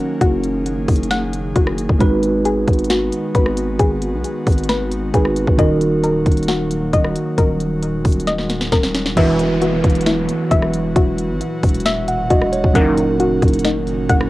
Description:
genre	hip hop, trap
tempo	134 BPM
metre	4/4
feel	half-time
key	unclear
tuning	A4 = 436 Hz
part	mellow tine electric piano	accompaniment	0.0-14.3 s	Eb3 to F#5	-20 LUFS	right 2 dB	low-pass filter, cassette tape
part	airy breathy pad	sustained chords	0.0-14.3 s	Bb2 to Ab4	-26 LUFS	left 1 dB	chorus, cassette tape
part	soft round pluck	arpeggios	0.0-14.3 s	Eb4 to Gb5	-22 LUFS	left 3 dB	chorus, low-pass filter, cassette tape, tape echo
part	growling 808-style bass	bass	0.2-14.3 s	Eb1 to Cb2	-23 LUFS	equal	none
part	trap drum kit	drums	0.2-14.3 s	crash cymbal, hi-hat, kick drum, rim click, snare drum	-17 LUFS	equal	cassette tape
part	resonant sweep polysynth	stabs	9.2-9.4, 12.8-12.9 s	F#2 to E3	-24 LUFS	equal	chorus, cassette tape
part	downlifter	sound effects	9.2-12.8 s	none	-30 LUFS	left 1 dB	none
room	little or no reverb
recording	home recording on cassette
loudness	-15 LUFS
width	side -17 dB against mid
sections	0.0-9.2 A section; 9.2-14.3 B section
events	drum fill 8.3-9.2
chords	0.0 Gb6; 2.0 Abm7; 5.6 Ebm; 9.2 Esus2; 12.8 Gb6

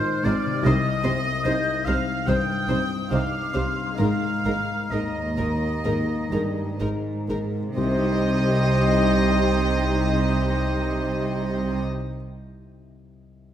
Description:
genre	cinematic, emotional film score for orchestra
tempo	60-76 BPM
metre	4/4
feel	rubato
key	C minor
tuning	A4 = 441 Hz
part	clear oboe	second line	0.0-11.8 s	C5 to G5	-30 LUFS	right 2 dB	none
part	mellow large flute ensemble	second line	0.0-11.8 s	G5 to G6	-35 LUFS	left 1 dB	none
part	warm symphonic violin section	second line	0.0-11.8 s	G4 to G5	-36 LUFS	left 2 dB	none
part	dark baby grand piano	accompaniment	0.0-13.5 s	C2 to Eb5	-29 LUFS	left 3 dB	none
part	concert harp	arpeggios	0.0-12.1 s	Ab2 to G5	-34 LUFS	left 7 dB	none
part	dark symphonic viola section	accompaniment	0.2-11.8 s	F3 to Ab4	-29 LUFS	right 1 dB	none
part	warm symphonic cello section	bass	0.2-11.8 s	Eb2 to C3	-28 LUFS	right 2 dB	none
part	warm symphonic violin section	melody	0.3-11.8 s	Bb4 to Eb5	-31 LUFS	left 4 dB	none
part	dark symphonic double bass section	bass	0.3-11.8 s	Ab1 to C2	-27 LUFS	right 2 dB	none
room	wet scoring stage reverb, RT60 1.8 s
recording	none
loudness	-21 LUFS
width	side -10 dB against mid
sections	0.0-7.8 A section; 7.8-11.6 B section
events	slowing down 0.0-7.8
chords	0.0 Fm7/Ab; 0.6 Cm; 4.0 Absus2; 7.8 Cm

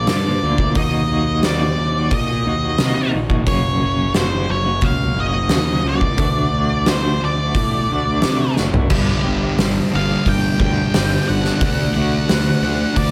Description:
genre	quiet-loud alternative rock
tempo	88 BPM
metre	4/4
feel	straight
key	unclear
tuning	A4 = 440 Hz
part	octave-fuzz lead guitar	melody	0.0-13.1 s	C5 to G5	-25 LUFS	equal	distortion, digital delay
part	clean electric guitar	arpeggios	0.0-13.1 s	Gb2 to G4	-27 LUFS	equal	tremolo
part	fuzz picked electric bass	bass	0.0-13.1 s	Gb1 to C3	-24 LUFS	equal	overdrive
part	oversized low-tuned drum kit	drums	0.1-13.1 s	crash cymbal, hi-hat, kick drum, snare drum, toms	-22 LUFS	equal	none
part	thick fuzz guitar	riff	8.9-13.1 s	G2 to D4	-22 LUFS	equal	distortion
room	light reverb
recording	none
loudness	-18 LUFS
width	mono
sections	0.0-8.9 A section; 8.9-13.1 B section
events	drum fill 8.6-8.9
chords	0.0 Bb; 0.8 Ebm; 3.5 Gb; 6.2 D; 8.9 Gm; 11.6 D

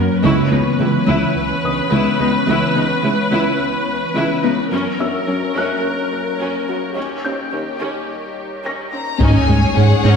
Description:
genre	cinematic, hybrid orchestral and electronic film score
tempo	107 BPM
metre	4/4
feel	straight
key	C# dorian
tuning	A4 = 440 Hz
part	clear symphonic viola section	accompaniment	0.0-10.2 s	G#3 to B4	-21 LUFS	equal	none
part	glassy FM pad	sustained chords	0.0-10.2 s	E3 to C#5	-23 LUFS	left 2 dB	ensemble chorus, built-in reverb
part	harp-like synth pluck	arpeggios	0.0-10.2 s	C#3 to G#4	-23 LUFS	left 1 dB	chorus, phaser, digital delay
part	round analog bass	riff	0.0-10.2 s	C#2 to F#3	-21 LUFS	right 2 dB	none
part	warm symphonic cello section	bass	0.0-10.1 s	C#2 to G#2	-22 LUFS	right 1 dB	none
part	felt-muted upright piano	texture	0.0-9.2 s	E5 to A#6	-28 LUFS	left 2 dB	digital delay
part	warm symphonic violin section	melody	8.9-10.2 s	F#5 to A#5	-23 LUFS	left 4 dB	none
part	warm symphonic violin section	second line	9.2-10.2 s	G#4 to C#5	-21 LUFS	left 5 dB	none
part	taiko ensemble	drums	9.2-10.2 s	none	-19 LUFS	left 1 dB	none
room	wet scoring stage reverb, RT60 1.8 s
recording	heard from further back in the room, high-pass filter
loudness	-15 LUFS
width	side -6 dB against mid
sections	0.0-9.2 A section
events	build-up 0.0-9.2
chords	0.2 C#m7; 4.7 F#; 7.0 D#7; 9.2 G#sus4

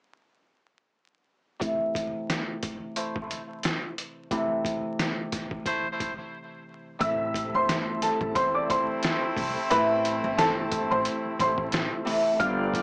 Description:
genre	hip hop, boom-bap hip-hop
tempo	89 BPM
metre	4/4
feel	swing 57% on 16ths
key	A minor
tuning	A4 = 440 Hz
part	Celtic harp	accompaniment	1.6-12.8 s	C3 to F4	-30 LUFS	equal	high-pass filter, low-pass filter
part	trip hop sampler-style drum kit	drums	1.6-12.8 s	hi-hat, kick drum, snare drum	-31 LUFS	equal	none
part	bright trumpet section	stabs	3.0-12.8 s	A3 to D5	-32 LUFS	equal	high-pass filter, low-pass filter, tape echo
part	warm upright piano	melody	7.0-12.8 s	A4 to F6	-26 LUFS	equal	high-pass filter, low-pass filter
part	percussive tonewheel organ	sustained chords	7.0-12.8 s	C3 to G4	-35 LUFS	equal	overdrive, fast rotary speaker, high-pass filter, low-pass filter
part	upright bass	bass	7.0-12.8 s	G1 to E2	-35 LUFS	equal	none
room	light reverb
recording	vinyl crackle, small speaker sound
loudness	-24 LUFS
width	side -32 dB against mid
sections	1.6-7.0 A section; 7.0-12.8 B section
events	filter sweep 1.6-7.0; break 6.3-7.0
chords	1.6 Am

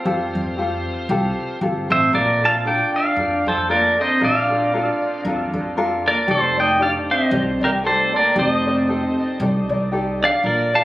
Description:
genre	Hawaiian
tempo	116 BPM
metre	4/4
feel	swing 57% on 8ths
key	Bb major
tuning	A4 = 439 Hz
part	pedal steel guitar	melody	0.0-10.8 s	G4 to A5	-19 LUFS	equal	tape echo
part	tenor ukulele	accompaniment	0.0-10.8 s	C4 to D5	-24 LUFS	left 2 dB	none
part	upright bass	bass	0.1-10.8 s	F1 to F2	-25 LUFS	equal	none
part	vibraphone with medium hard mallets	second line	1.9-10.8 s	G3 to F4	-25 LUFS	equal	tape echo
room	moderate echo chamber reverb, RT60 1.3 s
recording	recorded on a phone in the room, club reverb, compression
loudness	-17 LUFS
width	side -16 dB against mid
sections	0.0-2.1 A section; 2.1-10.8 B section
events	none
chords	0.0 Fadd9; 2.1 Bbmaj7; 6.3 F13

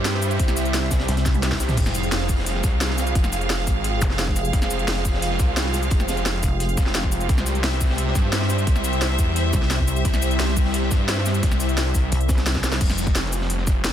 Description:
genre	dark technical drum and bass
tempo	174 BPM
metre	4/4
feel	straight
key	F harmonic minor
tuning	A4 = 440 Hz
part	deep dark ambient pad	sustained chords	0.0-13.9 s	G3 to G5	-29 LUFS	equal	chorus, built-in reverb, sidechain pumping
part	wide detuned saw bass	bass	0.0-13.9 s	F1 to G2	-24 LUFS	equal	chorus
part	rich studio string section	texture	0.0-12.8 s	G4 to F5	-29 LUFS	right 3 dB	sidechain pumping
part	crunchy breakbeat drum kit	drums	0.1-13.9 s	hi-hat, snare drum	-35 LUFS	equal	none
part	drum and bass drum kit	drums	0.1-13.9 s	cabasa, crash cymbal, hi-hat, snare drum, toms	-26 LUFS	equal	studio reverb
part	electronic kick drum	drums	0.4-13.7 s	none	-22 LUFS	equal	studio reverb
part	pulsing pluck wobble bass	bass	1.1-1.6, 4.0-6.8, 9.5-10.0, 12.1-12.6 s	F1 to C2	-22 LUFS	equal	chorus
part	zap	sound effects	4.0-4.1 s	none	-34 LUFS	left 1 dB	none
room	digital ambience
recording	dense, heavily limited modern master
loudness	-19 LUFS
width	side -10 dB against mid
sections	0.0-12.8 A section; 12.8-13.9 A section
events	drop 0.0-12.8, 12.8-13.9; drum fill 1.3-1.8, 12.6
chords	0.0 C; 1.8 Fmadd9; 7.3 C; 12.8 Fmadd9

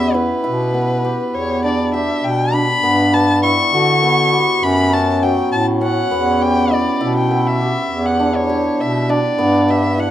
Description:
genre	contemporary instrumental, chamber music in an uneven meter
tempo	201 BPM (eighths)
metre	11/8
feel	straight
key	E dorian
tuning	A4 = 440 Hz
part	dark violin	melody	0.0-10.1 s	B4 to C#6	-19 LUFS	left 2 dB	none
part	hammered dulcimer	arpeggios	0.0-10.1 s	F#3 to G4	-18 LUFS	equal	none
part	clear bass clarinet	bass	0.0-10.1 s	E2 to D3	-18 LUFS	equal	none
room	light reverb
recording	close, detailed microphones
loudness	-14 LUFS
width	side -12 dB against mid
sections	0.0-10.1 A section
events	none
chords	0.0 Em7; 2.8 Gmaj7; 4.6 F#madd11; 6.1 Em7; 9.4 G

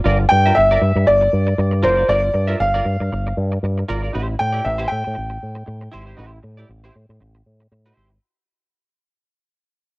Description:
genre	disco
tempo	117 BPM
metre	4/4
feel	swing 56% on 16ths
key	G dorian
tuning	A4 = 436 Hz
part	semi-hollow electric guitar	accompaniment	0.0-8.1 s	E4 to E5	-26 LUFS	right 2 dB	ensemble chorus, plate reverb
part	fingered electric bass with an envelope filter	bass	0.1-8.2 s	F#1 to A2	-20 LUFS	equal	none
part	warm grand piano	melody	0.3-7.7 s	C5 to G5	-17 LUFS	equal	cassette tape, plate reverb
room	light reverb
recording	home recording on cassette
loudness	-15 LUFS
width	side -24 dB against mid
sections	0.0-8.2 A section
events	fade-out 0.0-8.2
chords	0.0 Gm7; 4.1 Am7

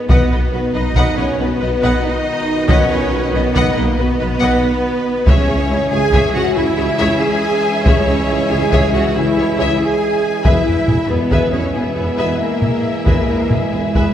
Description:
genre	cinematic, epic orchestral film score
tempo	92 BPM (dotted quarters)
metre	12/8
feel	straight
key	unclear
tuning	A4 = 440 Hz
part	rich symphonic violin section	second line	0.0-14.1 s	G#4 to G#5	-25 LUFS	left 3 dB	none
part	dark French horn section	sustained chords	0.0-14.1 s	G#3 to G#4	-21 LUFS	left 1 dB	none
part	dark trombone section	sustained chords	0.0-14.1 s	D#3 to B3	-24 LUFS	right 2 dB	none
part	warm symphonic string section	sustained chords	0.0-14.1 s	C#4 to E5	-25 LUFS	left 1 dB	none
part	rich symphonic cello section	bass	0.0-14.1 s	G#3 to G#4	-24 LUFS	right 2 dB	none
part	warm symphonic violin section	melody	0.1-14.1 s	G#4 to F#5	-25 LUFS	left 4 dB	none
part	rich symphonic viola section	accompaniment	0.1-14.1 s	E4 to D#5	-24 LUFS	left 1 dB	none
part	warm symphonic double bass section	bass	0.1-14.0 s	B1 to E2	-22 LUFS	right 1 dB	none
part	warm tuba	bass	0.1-14.0 s	E1 to C#2	-25 LUFS	right 1 dB	none
part	solo taiko drums	drums	0.1-14.1 s	none	-17 LUFS	equal	none
part	cymbal swell	sound effects	13.1-14.1 s	none	barely audible	none	none
room	wet scoring stage reverb, RT60 1.7 s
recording	heard from further back in the room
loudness	-13 LUFS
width	side -10 dB against mid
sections	0.0-14.1 A section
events	none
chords	0.1 B; 5.3 C#m; 10.4 E

